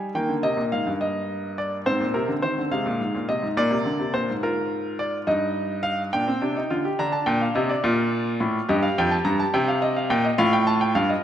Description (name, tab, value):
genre	classical, baroque-style 3-part fugue for grand piano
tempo	70 BPM (dotted quarters)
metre	12/8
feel	straight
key	Eb major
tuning	A4 = 440 Hz
part	clear grand piano	solo	0.0-11.2 s	F2 to Bb5	-21 LUFS	equal	none
room	moderate concert hall reverb, RT60 1.9 s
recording	none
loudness	-21 LUFS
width	side -10 dB against mid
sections	0.1-11.2 A section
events	none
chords	0.1 Eb; 1.9 Ab; 3.6 Bb7; 5.3 Eb/G; 7.0 Bb; 8.7 Eb; 10.4 F7